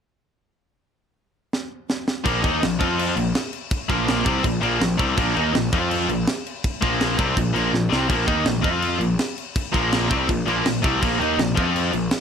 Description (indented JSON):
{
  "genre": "punk rock",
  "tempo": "164 BPM",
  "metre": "4/4",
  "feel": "straight",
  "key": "unclear",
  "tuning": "A4 = 440 Hz",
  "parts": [
    { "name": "tight metal drum kit", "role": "drums", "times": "1.5-12.2 s", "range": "crash cymbal, kick drum, snare drum", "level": "-25 LUFS", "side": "equal", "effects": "none" },
    { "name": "cranked stack guitar", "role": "riff", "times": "2.2-12.1 s", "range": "Bb2 to F4", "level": "-25 LUFS", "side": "right 15 dB", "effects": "overdrive" },
    { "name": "distorted electric guitar", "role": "riff", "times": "2.2-12.1 s", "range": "Bb2 to F4", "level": "-22 LUFS", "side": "left 10 dB", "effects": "overdrive" },
    { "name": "fuzz picked electric bass", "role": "bass", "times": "2.3-12.1 s", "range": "Bb1 to F2", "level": "-26 LUFS", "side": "equal", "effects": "overdrive" }
  ],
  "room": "little or no reverb",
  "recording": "none",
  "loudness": "-19 LUFS",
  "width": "side -7 dB against mid",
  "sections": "0.8-2.2 A section; 2.2-12.2 B section",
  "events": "drum fill 1.5-2.2, 7.7-8.1",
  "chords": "0.8 N.C.; 2.2 Bb5; 2.8 F5; 3.2 Bb5; 5.7 F5; 6.1 Bb5; 8.6 F5; 9.0 Bb5; 11.6 F5"
}